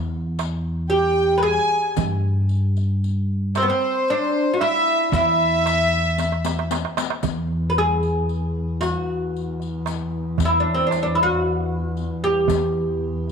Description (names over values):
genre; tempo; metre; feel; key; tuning
Arabic maqam ensemble; 114 BPM (eighths); 10/8; straight; E maqam saba; A4 = 441 Hz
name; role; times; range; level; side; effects
upright bass; bass; 0.0-13.3 s; E2 to G2; -24 LUFS; equal; none
darbuka; percussion; 0.4-13.3 s; none; -28 LUFS; right 10 dB; none
riq; percussion; 0.4-13.3 s; none; -32 LUFS; left 14 dB; none
oud; melody; 0.9-13.3 s; B3 to B4; -21 LUFS; right 1 dB; none
warm studio violin section; second line; 0.9-6.7 s; C5 to G#5; -22 LUFS; left 1 dB; none
warm double bass; drone; 7.2-13.3 s; E2; -28 LUFS; left 1 dB; none
room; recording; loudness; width
moderate echo chamber reverb, RT60 1.7 s, small room ambience; 1960s-style stereo with parts hard left and right; -19 LUFS; side -6 dB against mid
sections
0.0-7.2 A section; 7.2-13.3 B section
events
drum fill 6.2-7.2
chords
none